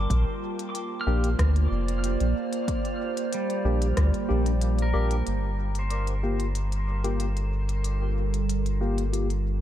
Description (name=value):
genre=ambient dub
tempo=93 BPM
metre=4/4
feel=straight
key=G minor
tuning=A4 = 440 Hz
part: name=warbly tape-like pad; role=sustained chords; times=0.0-9.6 s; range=G3 to A5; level=-32 LUFS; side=right 3 dB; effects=chorus, built-in reverb, phaser
part: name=pedal steel guitar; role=arpeggios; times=0.0-8.1 s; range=G3 to F6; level=-36 LUFS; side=right 2 dB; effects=low-pass filter, dub echo
part: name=soft dub sub bass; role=bass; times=0.0-9.6 s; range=F1 to D2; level=-25 LUFS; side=equal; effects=tube saturation
part: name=electronic kick drum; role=drums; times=0.1-4.1 s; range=none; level=-31 LUFS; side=equal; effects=overdrive
part: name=organic electronic drum kit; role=drums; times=0.1-9.4 s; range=hi-hat, rim click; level=-38 LUFS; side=left 2 dB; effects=none
part: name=barky tine electric piano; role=stabs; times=1.1-9.3 s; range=Bb3 to G4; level=-34 LUFS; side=left 4 dB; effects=overdrive, phaser, low-pass filter, dub echo
room=digital ambience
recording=none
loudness=-24 LUFS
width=side -12 dB against mid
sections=0.0-5.3 A section; 5.3-9.6 B section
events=filter sweep on ambient pad 5.3-9.6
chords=0.1 Bb6; 5.3 Gm7